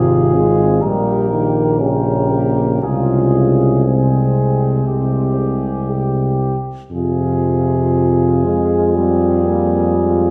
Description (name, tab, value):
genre	classical, hymn-like piece for brass band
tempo	59 BPM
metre	4/4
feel	rubato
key	F minor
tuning	A4 = 440 Hz
part	mellow cornet	melody	0.0-10.3 s	G4 to Bb4	-28 LUFS	equal	none
part	mellow French horn section	second line	0.0-10.3 s	C4 to Ab4	-23 LUFS	equal	none
part	clear euphonium	accompaniment	0.0-10.3 s	Ab3 to Db4	-27 LUFS	equal	none
part	warm trombone	accompaniment	0.0-10.3 s	C3 to Ab3	-21 LUFS	equal	none
part	clear tuba	bass	0.0-10.3 s	Ab1 to F2	-20 LUFS	equal	none
room	wet recital hall reverb, RT60 1.6 s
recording	heard from further back in the room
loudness	-16 LUFS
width	mono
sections	0.0-10.3 A section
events	none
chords	0.0 Fm; 0.8 Gdim/Bb; 2.8 Fm/C; 4.9 C5; 6.9 Fm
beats	0.82 1.80 | 2.83 3.84 4.85 5.87 | 6.91 7.94 8.94 9.94